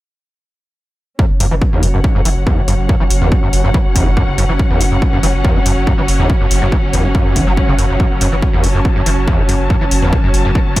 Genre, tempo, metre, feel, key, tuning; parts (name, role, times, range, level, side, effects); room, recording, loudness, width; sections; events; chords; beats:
driving peak-time techno; 141 BPM; 4/4; straight; F# minor; A4 = 441 Hz
screaming distorted acid line; riff; 1.2-10.8 s; F#1 to F#3; -18 LUFS; equal; distortion, ensemble chorus, sidechain pumping, dub echo
swarming drone; drone; 1.9-10.8 s; F#3 to C#4; -23 LUFS; equal; built-in reverb, sidechain pumping
electronic kick drum; drums; 1.2-10.8 s; -15 LUFS; equal; overdrive, studio ambience
muted studio string section; texture; 1.2-10.8 s; C#4 to A5; -22 LUFS; equal; sidechain pumping
saturated sub bass; bass; 1.3-10.8 s; F#1; -17 LUFS; equal; tube saturation, sidechain pumping, low-pass filter
electronic hi-hat; drums; 1.4-10.8 s; -22 LUFS; left 1 dB; overdrive, sidechain pumping on hats, studio ambience
little or no reverb; echo-heavy mix; -11 LUFS; side -17 dB against mid
1.2-10.8 A section
filter sweep on acid bass 1.2-10.8
1.2 F#5
| 1.19 1.62 2.04 2.47 | 2.89 3.32 3.74 4.17 | 4.59 5.02 5.45 5.87 | 6.30 6.72 7.15 7.57 | 8.00 8.42 8.85 9.28 | 9.70 10.13 10.55